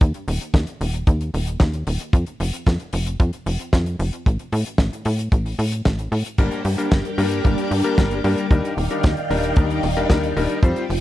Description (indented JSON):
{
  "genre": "italo disco",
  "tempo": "113 BPM",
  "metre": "4/4",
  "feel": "straight",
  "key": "unclear",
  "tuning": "A4 = 440 Hz",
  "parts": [
    { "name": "tight sequencer bass", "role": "bass", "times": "0.0-11.0 s", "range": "Eb1 to A2", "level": "-23 LUFS", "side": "equal", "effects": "tube saturation, tape echo" },
    { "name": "damped 70s drum kit", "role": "drums", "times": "0.0-11.0 s", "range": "crash cymbal, hi-hat, snare drum", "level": "-27 LUFS", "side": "left 1 dB", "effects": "studio reverb" },
    { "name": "kick drum", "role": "drums", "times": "0.0-10.7 s", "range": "none", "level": "-16 LUFS", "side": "equal", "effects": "studio reverb" },
    { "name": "phased string machine", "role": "sustained chords", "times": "6.4-11.0 s", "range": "Eb3 to D6", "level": "-24 LUFS", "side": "equal", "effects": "ensemble chorus, phaser" },
    { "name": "bright electric grand piano", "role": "stabs", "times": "6.4-10.8 s", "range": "G3 to C5", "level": "-24 LUFS", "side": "left 4 dB", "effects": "tape echo" }
  ],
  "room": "little or no reverb",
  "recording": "dry, close 1970s-style studio recording",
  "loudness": "-18 LUFS",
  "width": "side -14 dB against mid",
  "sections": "0.0-11.0 A section",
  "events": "none",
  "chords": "0.0 N.C.; 6.4 Gm; 8.5 Ebmaj7"
}